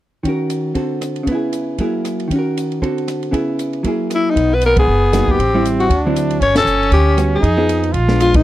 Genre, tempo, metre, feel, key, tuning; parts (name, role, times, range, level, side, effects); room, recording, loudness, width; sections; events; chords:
jazz, small-group swing and bop; 233 BPM; 4/4; swing 58% on 8ths; A4 = 443 Hz
vintage hollow-body jazz guitar; accompaniment; 0.2-8.4 s; C#3 to A#4; -19 LUFS; right 1 dB
compact cocktail drum kit; drums; 0.2-8.4 s; hi-hat, kick drum, ride cymbal, rim click, snare drum; -20 LUFS; equal
growling alto saxophone; melody; 4.2-8.4 s; D#4 to C#5; -16 LUFS; left 2 dB
warm trumpet; second line; 4.3-8.3 s; B3 to E#4; -20 LUFS; right 2 dB
upright bass; bass; 4.4-8.4 s; F#1 to F2; -17 LUFS; equal
small room ambience; dry, close 1970s-style studio recording; -14 LUFS; side -14 dB against mid
0.2-4.4 A section; 4.4-8.4 B section
band accent 4.7, 6.5
0.2 D#m7; 0.7 D7; 1.3 C#m7; 1.8 F#9; 2.3 D#m7; 2.8 D7; 3.3 C#m7; 3.8 F#9; 4.4 Bmaj7; 5.4 Am7; 5.9 D9; 6.4 Gmaj9#11; 7.4 Fm7b5